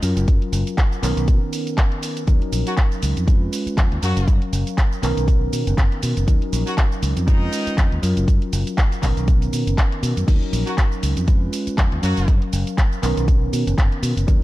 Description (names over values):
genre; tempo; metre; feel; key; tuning
filtered disco house; 120 BPM; 4/4; swing 57% on 16ths; F# major; A4 = 440 Hz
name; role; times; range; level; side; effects
bell-like tine electric piano; accompaniment; 0.0-14.4 s; D#3 to E#5; -26 LUFS; equal; phaser, sidechain pumping
fingered electric bass; bass; 0.0-14.4 s; F#1 to B2; -22 LUFS; equal; sidechain pumping
house drum kit; drums; 0.0-14.4 s; crash cymbal, handclaps, hi-hat, shaker; -28 LUFS; equal; sidechain pumping on hats, sidechain pumping on perc, sidechain pumping on cymbals
electronic kick drum; drums; 0.3-14.4 s; none; -17 LUFS; equal; none
brilliant horn section; melody; 2.7-12.4 s; D#3 to F#4; -30 LUFS; left 1 dB; sidechain pumping
room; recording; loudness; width
digital ambience; dark, warm production; -17 LUFS; side -17 dB against mid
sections
0.0-14.4 A section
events
none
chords
0.0 F#maj7; 1.0 Bmaj9; 2.3 D#m7; 3.3 C#7/E#; 4.0 F#maj7; 5.0 Bmaj9; 6.3 D#m7; 7.3 C#7/E#; 8.0 F#maj7; 9.0 Bmaj9; 10.3 D#m7; 11.3 C#7/E#; 12.0 F#maj7; 13.0 Bmaj9